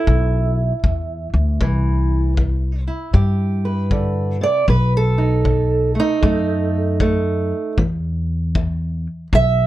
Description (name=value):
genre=acoustic country blues, solo or duo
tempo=78 BPM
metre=4/4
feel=swing 64% on 8ths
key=E minor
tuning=A4 = 438 Hz
part: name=fingerpicked old ladder-braced acoustic guitar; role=melody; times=0.0-9.7 s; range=F#2 to E5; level=-20 LUFS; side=right 3 dB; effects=none
part: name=upright bass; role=bass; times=0.1-9.7 s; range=B1 to G2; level=-18 LUFS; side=equal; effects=none
part: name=kick drum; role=drums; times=0.1-9.6 s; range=none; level=-21 LUFS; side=left 1 dB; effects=none
room=little or no reverb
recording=dark, warm production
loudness=-16 LUFS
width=side -14 dB against mid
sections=0.0-9.7 A section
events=none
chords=0.0 E5; 1.6 Cmaj7; 4.7 B7; 7.8 E5